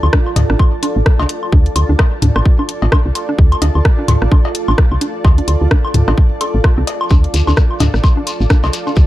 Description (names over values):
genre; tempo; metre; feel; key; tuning
minimal techno; 129 BPM; 4/4; swing 58% on 16ths; D minor; A4 = 440 Hz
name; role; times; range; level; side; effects
woody FM bass; bass; 0.0-9.1 s; A1 to D2; -14 LUFS; equal; sidechain pumping
electronic woodblock, toms and cowbell; percussion; 0.0-8.9 s; none; -20 LUFS; left 2 dB; overdrive, studio ambience
granular cloud pad; texture; 0.0-9.1 s; F4 to A5; -23 LUFS; right 2 dB; built-in reverb, sidechain pumping
hollow square pluck; riff; 0.1-8.9 s; C4 to A4; -23 LUFS; right 1 dB; chorus, sidechain pumping, ping-pong delay
electronic kick drum; drums; 0.1-9.1 s; none; -11 LUFS; equal; studio ambience
garage drum kit; drums; 0.1-8.8 s; hi-hat, rim click; -21 LUFS; left 1 dB; studio ambience
shekere; percussion; 7.1-9.1 s; none; -28 LUFS; left 5 dB; none
room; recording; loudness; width
little or no reverb; dark, warm production; -11 LUFS; side -15 dB against mid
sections
0.0-9.1 A section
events
none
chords
0.0 Dm